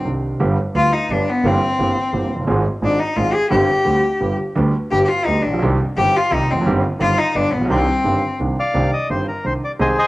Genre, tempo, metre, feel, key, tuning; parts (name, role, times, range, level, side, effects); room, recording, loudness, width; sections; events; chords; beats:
tango; 172 BPM; 3/4; rubato; C harmonic minor; A4 = 439 Hz
bright cello; second line; 0.0-8.4 s; B3 to Ab4; -18 LUFS; left 2 dB; cassette tape
warm grand piano; accompaniment; 0.0-9.9 s; F1 to Ab4; -20 LUFS; right 2 dB; cassette tape
clear double bass; bass; 0.0-10.0 s; F1 to D2; -23 LUFS; right 1 dB
bandoneon; melody; 8.6-10.1 s; Ab4 to Ab5; -19 LUFS; left 1 dB
moderate spring reverb, RT60 2.4 s; home recording on cassette; -16 LUFS; side -18 dB against mid
0.4-8.8 A section; 8.8-10.1 B section
cello solo 0.4-8.8
0.4 G; 1.4 C7/G; 2.5 Fm/Ab; 3.5 Gsus4; 4.2 G; 5.6 Cm; 6.7 Cm/G; 7.4 G; 7.7 Cmadd9
0.05 | 0.40 0.75 1.10 | 1.45 1.80 2.14 | 2.49 2.83 3.17 | 3.52 3.87 4.22 | 4.57 4.92 5.27 | 5.62 5.97 6.32 | 6.66 7.01 7.35 | 7.70 8.05 8.40 | 8.75 9.10 9.45 | 9.80